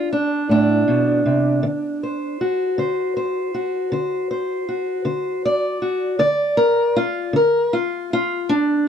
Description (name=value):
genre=acoustic country blues, solo or duo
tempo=53 BPM (dotted quarters)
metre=12/8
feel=straight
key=unclear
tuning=A4 = 439 Hz
part: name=fingerpicked steel-string acoustic guitar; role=solo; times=0.0-8.9 s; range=A2 to D5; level=-18 LUFS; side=equal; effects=none
room=little or no reverb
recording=dry, close 1970s-style studio recording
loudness=-18 LUFS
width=side -8 dB against mid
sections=0.0-8.9 A section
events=none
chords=0.0 G (rootless); 1.6 D7